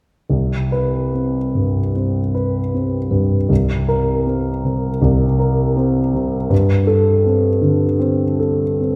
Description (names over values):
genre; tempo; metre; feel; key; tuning
classical, impressionist solo piano; 71-82 BPM; 4/4; rubato; unclear; A4 = 440 Hz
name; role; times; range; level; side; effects
warm grand piano; solo; 0.3-9.0 s; C2 to B4; -17 LUFS; equal; none
room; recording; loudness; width
wet scoring stage reverb, RT60 1.8 s; heard from further back in the room; -18 LUFS; mono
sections
0.3-9.0 A section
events
none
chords
0.3 C5; 3.5 Bbsus2/C; 6.5 Gsus24